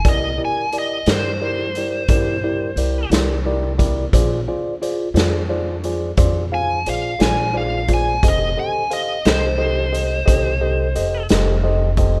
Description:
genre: slow blues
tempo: 59 BPM (dotted quarters)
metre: 12/8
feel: straight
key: unclear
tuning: A4 = 440 Hz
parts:
  - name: biting lead guitar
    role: melody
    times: 0.0-11.3 s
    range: C5 to Ab5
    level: -25 LUFS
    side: equal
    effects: overdrive
  - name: tine electric piano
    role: accompaniment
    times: 0.0-12.2 s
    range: E4 to F5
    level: -25 LUFS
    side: equal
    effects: phaser
  - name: raw garage drum kit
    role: drums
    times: 0.0-12.1 s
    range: hi-hat, kick drum, snare drum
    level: -23 LUFS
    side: equal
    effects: none
  - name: upright bass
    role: bass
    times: 0.1-12.2 s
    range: F1 to G2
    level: -24 LUFS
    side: equal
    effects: none
room: little or no reverb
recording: rough home demo mix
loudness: -19 LUFS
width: mono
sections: 0.0-12.2 A section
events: none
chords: 0.1 C7; 4.1 Bb7; 8.2 F7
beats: | 0.05 1.07 2.09 3.12 | 4.14 5.16 6.18 7.21 | 8.23 9.26 10.28 11.30

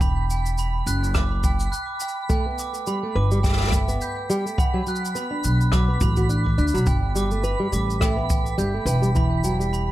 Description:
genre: folktronica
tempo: 105 BPM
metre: 4/4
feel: swing 56% on 16ths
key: G major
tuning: A4 = 440 Hz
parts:
  - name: glockenspiel with brass mallets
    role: second line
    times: 0.0-9.9 s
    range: G5 to G6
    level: -30 LUFS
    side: right 5 dB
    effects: digital delay
  - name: upright bass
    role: bass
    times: 0.0-9.9 s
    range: E1 to D2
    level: -22 LUFS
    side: equal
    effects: none
  - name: kick drum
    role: drums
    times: 0.0-9.3 s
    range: none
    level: -23 LUFS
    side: equal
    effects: none
  - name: shaker and rim click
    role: drums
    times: 0.0-9.9 s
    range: none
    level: -31 LUFS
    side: left 1 dB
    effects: none
  - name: twinkling granular texture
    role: texture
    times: 0.0-9.9 s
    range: B5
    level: -34 LUFS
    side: right 2 dB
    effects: built-in reverb
  - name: nylon-string guitar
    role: arpeggios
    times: 2.3-9.9 s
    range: E3 to F#5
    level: -26 LUFS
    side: equal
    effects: ping-pong delay
room: little or no reverb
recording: vinyl crackle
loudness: -20 LUFS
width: side -15 dB against mid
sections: 0.0-9.9 A section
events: none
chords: 0.0 Emadd9; 2.3 Gadd9; 4.6 Bm; 6.9 Gadd9; 9.2 Emadd9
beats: | 0.01 0.58 1.16 1.73 | 2.30 2.87 3.44 4.01 | 4.58 5.16 5.73 6.30 | 6.87 7.44 8.01 8.58 | 9.15 9.73

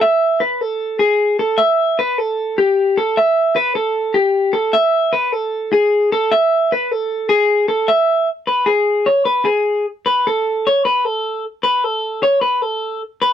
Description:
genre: rock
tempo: 152 BPM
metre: 4/4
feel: straight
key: unclear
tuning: A4 = 440 Hz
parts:
  - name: electric guitar through a small old amp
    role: solo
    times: 0.0-13.3 s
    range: G4 to E5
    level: -14 LUFS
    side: equal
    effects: none
room: little or no reverb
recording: dry, close 1970s-style studio recording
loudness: -14 LUFS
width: side -10 dB against mid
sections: 0.0-8.3 A section; 8.3-13.3 B section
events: none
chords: none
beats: 0.02 | 0.41 0.81 1.20 1.59 | 1.99 2.38 2.77 3.17 | 3.56 3.96 4.35 4.74 | 5.14 5.53 5.92 6.32 | 6.71 7.10 7.50 7.89 | 8.28 8.68 9.07 9.47 | 9.86 10.26 10.65 11.04 | 11.44 11.83 12.23 12.62 | 13.02

